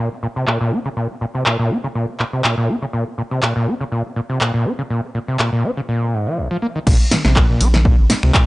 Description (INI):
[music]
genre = acid house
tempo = 122 BPM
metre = 4/4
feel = swing 54% on 16ths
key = Bb minor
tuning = A4 = 440 Hz
[part]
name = overdriven acid bass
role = riff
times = 0.0-8.5 s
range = Bb1 to Db4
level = -19 LUFS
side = equal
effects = distortion, wide subtle chorus, cassette tape, sidechain pumping, tape echo
[part]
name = punchy analog drum machine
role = drums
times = 0.5-8.4 s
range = crash cymbal, finger snaps, handclaps, hi-hat, ride cymbal, snare drum, toms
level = -19 LUFS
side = equal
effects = low-pass filter on hats, low-pass filter on cymbals, low-pass filter on snare, low-pass filter on toms
[part]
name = saturated sub bass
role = bass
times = 6.9-8.3 s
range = Ab1 to Db2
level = -16 LUFS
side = equal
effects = sidechain pumping
[part]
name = electronic kick drum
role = drums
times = 6.9-8.4 s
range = none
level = -14 LUFS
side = equal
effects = none
[sound]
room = light reverb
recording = dry, gritty hardware recording, transformer saturation, nothing above 10.4 kHz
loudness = -16 LUFS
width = side -20 dB against mid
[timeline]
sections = 0.0-6.9 A section; 6.9-8.5 B section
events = drop 6.9-8.5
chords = none